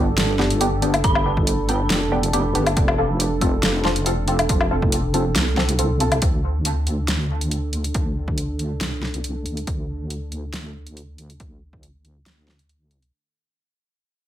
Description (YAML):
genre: deep dubstep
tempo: 139 BPM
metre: 4/4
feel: half-time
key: D dorian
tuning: A4 = 440 Hz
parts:
  - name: dark analog pad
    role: sustained chords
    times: 0.0-13.2 s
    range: D4 to A4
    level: -28 LUFS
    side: right 1 dB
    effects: chorus
  - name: filtered dub chord stab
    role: stabs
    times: 0.0-6.1 s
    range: B3 to A4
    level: -26 LUFS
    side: equal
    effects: analog chorus, dub echo
  - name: deep soft wobble bass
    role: bass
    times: 0.0-13.1 s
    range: F1 to D2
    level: -23 LUFS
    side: equal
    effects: chorus
  - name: deep house drum kit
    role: drums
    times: 0.2-13.1 s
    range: hi-hat, snare drum, woodblock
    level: -24 LUFS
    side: left 1 dB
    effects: overdrive, studio reverb
  - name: dark detuned synth bell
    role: melody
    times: 1.0-1.4 s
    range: B5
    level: -30 LUFS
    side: equal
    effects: chorus, dub echo
  - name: electronic kick drum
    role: drums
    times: 1.0-11.8 s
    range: none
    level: -22 LUFS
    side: equal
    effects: overdrive, studio reverb
room: light reverb, digital ambience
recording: none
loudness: -19 LUFS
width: side -11 dB against mid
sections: 0.0-6.2 A section; 6.2-13.1 B section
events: drop 0.0-6.2; fade-out 6.2-13.1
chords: 0.0 G; 2.8 F; 6.2 D5